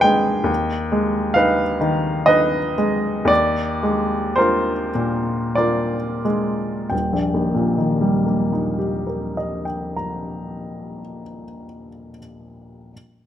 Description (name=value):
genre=classical, romantic nocturne for solo piano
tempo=41-69 BPM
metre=3/4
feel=rubato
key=Eb major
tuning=A4 = 440 Hz
part: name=bright upright piano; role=solo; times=0.0-12.9 s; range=Eb1 to Bb5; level=-18 LUFS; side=equal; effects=none
room=moderate recital hall reverb, RT60 1.6 s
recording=close, detailed microphones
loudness=-18 LUFS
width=side -10 dB against mid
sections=0.0-6.9 A section; 6.9-10.7 B section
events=slowing down 0.0-6.9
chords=0.5 Abm/Eb; 3.3 Bb7/Eb; 6.9 Eb